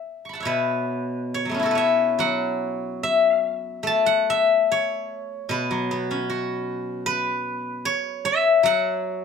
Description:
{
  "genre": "chinese traditional, Chinese solo plucked strings",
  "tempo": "67-77 BPM",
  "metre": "4/4",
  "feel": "rubato",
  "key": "unclear",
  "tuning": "A4 = 441 Hz",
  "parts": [
    { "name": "steel-string zither", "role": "solo", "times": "0.0-9.2 s", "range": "B2 to C#6", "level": "-21 LUFS", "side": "left 3 dB", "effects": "none" }
  ],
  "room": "moderate studio reverb, RT60 0.6 s",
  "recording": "close, detailed microphones",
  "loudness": "-20 LUFS",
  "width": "side -6 dB against mid",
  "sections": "0.5-9.2 A section",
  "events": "none",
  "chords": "none",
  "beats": "| 0.48 1.34 2.19 3.03 | 3.86 4.70 5.51 6.29 | 7.08 7.87 8.66"
}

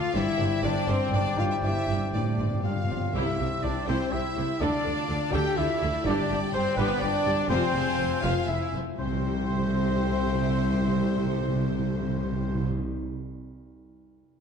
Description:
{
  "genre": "cinematic, heroic adventure film score",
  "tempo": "123 BPM",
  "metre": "3/4",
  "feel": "straight",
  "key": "C major",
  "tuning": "A4 = 441 Hz",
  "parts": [
    { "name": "bright symphonic violin section", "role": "melody", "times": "0.0-12.7 s", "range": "B4 to G5", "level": "-38 LUFS", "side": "left 2 dB", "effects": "none" },
    { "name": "concert flute", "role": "second line", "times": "0.0-12.7 s", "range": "B4 to C6", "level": "-37 LUFS", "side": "left 2 dB", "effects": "none" },
    { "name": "warm clarinet", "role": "second line", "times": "0.0-12.7 s", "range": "A4 to G5", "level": "-39 LUFS", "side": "left 1 dB", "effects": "none" },
    { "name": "warm oboe", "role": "second line", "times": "0.0-12.7 s", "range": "B4 to G5", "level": "-37 LUFS", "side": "right 2 dB", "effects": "none" },
    { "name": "clear French horn section", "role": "sustained chords", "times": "0.0-12.7 s", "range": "B3 to G4", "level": "-30 LUFS", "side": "left 3 dB", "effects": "none" },
    { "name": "concert harp", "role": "arpeggios", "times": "0.0-13.1 s", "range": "F2 to C6", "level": "-36 LUFS", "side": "left 7 dB", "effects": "none" },
    { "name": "rich symphonic cello section", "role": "bass", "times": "0.1-12.7 s", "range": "C2 to D3", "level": "-31 LUFS", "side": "equal", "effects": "none" },
    { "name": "rich symphonic double bass section", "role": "bass", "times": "0.1-12.7 s", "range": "F1 to D2", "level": "-32 LUFS", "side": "right 3 dB", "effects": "none" },
    { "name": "rich studio violin section", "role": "second line", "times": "0.2-12.7 s", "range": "C5 to Ab5", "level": "-40 LUFS", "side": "left 2 dB", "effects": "none" },
    { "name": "rich symphonic viola section", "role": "accompaniment", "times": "0.2-12.7 s", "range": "G3 to C5", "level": "-37 LUFS", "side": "right 1 dB", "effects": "none" },
    { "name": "timpani", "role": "percussion", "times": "0.2-3.8, 6.1-6.7, 9.0-12.8 s", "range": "G2 to C3", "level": "-33 LUFS", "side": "right 1 dB", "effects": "none" }
  ],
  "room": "wet scoring stage reverb, RT60 1.4 s",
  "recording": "dark, warm production",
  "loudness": "-24 LUFS",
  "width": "side -6 dB against mid",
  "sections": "0.0-3.1 A section; 3.1-9.0 B section; 9.0-11.9 C section",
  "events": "timpani fill 0.2-3.1",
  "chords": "0.2 Gsus4; 3.1 C; 4.6 Dm; 6.1 Gsus4; 7.5 Fm; 9.0 C",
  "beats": "| 0.15 0.64 1.13 | 1.64 2.14 2.64 | 3.14 3.63 4.12 | 4.61 5.09 5.57 | 6.06 6.54 7.02 | 7.50 7.98 8.48 | 8.98 9.47 9.96 | 10.44 10.93 11.42"
}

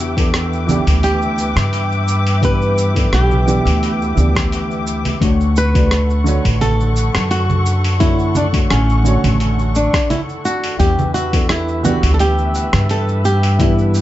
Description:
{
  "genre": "sunset chillout",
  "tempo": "86 BPM",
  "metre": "4/4",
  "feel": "swing 54% on 16ths",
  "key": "unclear",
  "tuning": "A4 = 442 Hz",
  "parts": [
    { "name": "flamenco guitar", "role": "melody", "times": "0.0-14.0 s", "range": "C#4 to B4", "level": "-21 LUFS", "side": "right 1 dB", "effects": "dub echo" },
    { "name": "dark baby grand piano", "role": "accompaniment", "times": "0.0-14.0 s", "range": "D3 to D5", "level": "-22 LUFS", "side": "moving between left 7 dB and right 4 dB", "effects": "auto-pan, low-pass filter, dub echo" },
    { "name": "muted studio string section", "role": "sustained chords", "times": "0.0-14.0 s", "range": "D3 to D6", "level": "-25 LUFS", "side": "left 2 dB", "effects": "none" },
    { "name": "upright bass", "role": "bass", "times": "0.0-14.0 s", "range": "A1 to G2", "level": "-16 LUFS", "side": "equal", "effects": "none" },
    { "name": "dusty soul sampler-style drum kit", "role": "drums", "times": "0.2-14.0 s", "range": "cabasa, congas, hi-hat, rim click", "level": "-22 LUFS", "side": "right 1 dB", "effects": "none" },
    { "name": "electronic kick drum", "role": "drums", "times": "0.2-13.7 s", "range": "none", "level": "-18 LUFS", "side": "equal", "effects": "none" }
  ],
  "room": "light reverb, studio reverb",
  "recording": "echo-heavy mix, nothing above 7.8 kHz",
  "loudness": "-13 LUFS",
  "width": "side -14 dB against mid",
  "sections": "0.0-14.0 A section",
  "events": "filter sweep on grand piano 0.0-14.0",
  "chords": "0.0 Em7; 5.2 Dmaj7; 10.8 Em7",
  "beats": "0.34 1.03 1.73 | 2.43 3.13 3.83 4.52 | 5.22 5.92 6.62 7.31 | 8.01 8.71 9.41 10.10 | 10.80 11.50 12.20 12.89 | 13.59"
}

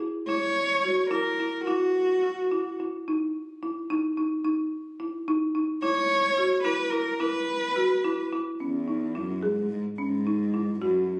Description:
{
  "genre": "contemporary instrumental, contemporary",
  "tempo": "217 BPM (eighths)",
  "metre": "5/8",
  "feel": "straight",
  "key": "unclear",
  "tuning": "A4 = 440 Hz",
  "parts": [
    { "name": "folk marimba with medium mallets", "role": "arpeggios", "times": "0.0-11.2 s", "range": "C#4 to G#4", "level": "-27 LUFS", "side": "equal", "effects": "none" },
    { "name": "dark cello", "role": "melody", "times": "0.3-2.7, 5.8-11.2 s", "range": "E2 to C#5", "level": "-26 LUFS", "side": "equal", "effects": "none" }
  ],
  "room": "moderate recital hall reverb, RT60 1.3 s",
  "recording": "recorded on a phone in the room, club reverb",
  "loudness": "-24 LUFS",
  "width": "side -25 dB against mid",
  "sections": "0.0-8.6 A section; 8.6-11.2 B section",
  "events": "none",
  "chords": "0.0 F#7(no3); 3.1 N.C.; 5.8 Esus2; 8.6 C#m; 10.0 F#5",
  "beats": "0.01 | 0.29 0.57 0.84 1.12 1.40 | 1.67 1.95 2.23 2.51 2.79 | 3.06 3.34 3.62 3.90 4.18 | 4.45 4.73 5.00 5.28 5.55 | 5.83 6.10 6.38 6.65 6.93 | 7.20 7.48 7.76 8.04 8.32 | 8.60 8.88 9.16 9.44 9.72 | 9.99 10.27 10.55 10.82 11.10"
}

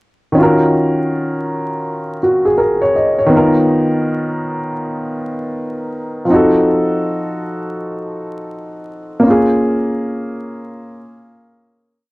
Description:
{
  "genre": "hip hop",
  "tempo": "81 BPM",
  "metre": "4/4",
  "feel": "swing 61% on 16ths",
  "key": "unclear",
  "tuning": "A4 = 440 Hz",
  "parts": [
    { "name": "dark upright piano", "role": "solo", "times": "0.3-12.1 s", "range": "D#3 to D#5", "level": "-14 LUFS", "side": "equal", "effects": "none" }
  ],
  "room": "wet small room reverb, RT60 0.5 s",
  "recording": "vinyl crackle",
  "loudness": "-13 LUFS",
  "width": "side -22 dB against mid",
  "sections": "0.4-12.1 A section",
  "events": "fade-out 9.3-12.1",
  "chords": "0.4 D#m7; 3.3 Bmaj9#11/D#; 6.3 F7b9; 9.3 A#m7",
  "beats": "| 0.36 1.10 1.84 2.58 | 3.33 4.07 4.81 5.55 | 6.29 7.03 7.77 8.51 | 9.25 9.99 10.73 11.47"
}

